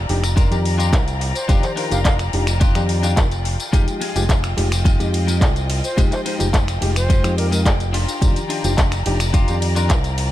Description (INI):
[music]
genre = nu-disco, nu disco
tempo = 107 BPM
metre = 4/4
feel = straight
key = unclear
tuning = A4 = 443 Hz
[part]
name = clear studio string section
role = sustained chords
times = 0.0-10.3 s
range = F4 to Bb5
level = -29 LUFS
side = left 3 dB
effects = sidechain pumping
[part]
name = fingered electric bass with an envelope filter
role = bass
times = 0.0-10.3 s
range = F1 to F2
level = -20 LUFS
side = equal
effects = sidechain pumping
[part]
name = overdriven reed electric piano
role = accompaniment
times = 0.1-10.0 s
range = Eb3 to D5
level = -27 LUFS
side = left 1 dB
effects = sidechain pumping, ping-pong delay
[part]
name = house drum kit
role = drums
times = 0.1-10.3 s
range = finger snaps, handclaps, hi-hat, ride cymbal, tambourine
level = -25 LUFS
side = left 1 dB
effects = none
[part]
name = clean electric guitar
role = riff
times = 0.4-10.2 s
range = Ab3 to G5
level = -29 LUFS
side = left 5 dB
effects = lush chorus, ping-pong delay
[part]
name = electronic kick drum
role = drums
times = 0.4-10.0 s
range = none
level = -17 LUFS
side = equal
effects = none
[part]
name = reedy concert flute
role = melody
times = 1.3-2.1, 5.8-7.6 s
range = Bb4 to F5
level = -29 LUFS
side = equal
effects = ping-pong delay
[sound]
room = digital ambience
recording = none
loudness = -16 LUFS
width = side -14 dB against mid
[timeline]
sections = 0.0-10.3 A section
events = clean electric guitar fill 7.1-8.2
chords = 0.0 Ebmaj9/F; 3.7 Fm9; 7.9 Ebmaj9/F